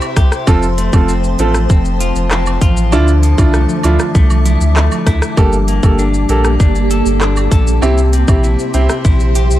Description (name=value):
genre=dancehall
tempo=98 BPM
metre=4/4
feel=straight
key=G dorian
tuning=A4 = 439 Hz
part: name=granular cloud pad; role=sustained chords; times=0.0-9.6 s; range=F3 to D6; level=-20 LUFS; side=right 1 dB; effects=built-in reverb, sidechain pumping
part: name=electric guitar at the edge of break-up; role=arpeggios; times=0.0-9.6 s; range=F2 to A4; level=-20 LUFS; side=left 4 dB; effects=none
part: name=island pop drum kit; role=drums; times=0.0-9.6 s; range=handclaps, hi-hat, kick drum, rim click, shaker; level=-14 LUFS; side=equal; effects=none
part: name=woodblock and cabasa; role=percussion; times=0.0-9.5 s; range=none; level=-28 LUFS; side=right 6 dB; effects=none
part: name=warm sub bass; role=bass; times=0.2-9.6 s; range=F1 to D2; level=-13 LUFS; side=equal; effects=none
part: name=bright grand piano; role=accompaniment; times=0.5-8.9 s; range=Bb3 to A4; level=-18 LUFS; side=right 3 dB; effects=none
room=digital ambience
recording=dark, warm production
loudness=-10 LUFS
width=side -14 dB against mid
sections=0.0-9.6 A section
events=none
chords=0.5 F; 2.9 Dmadd9; 5.4 Gmadd9; 7.8 C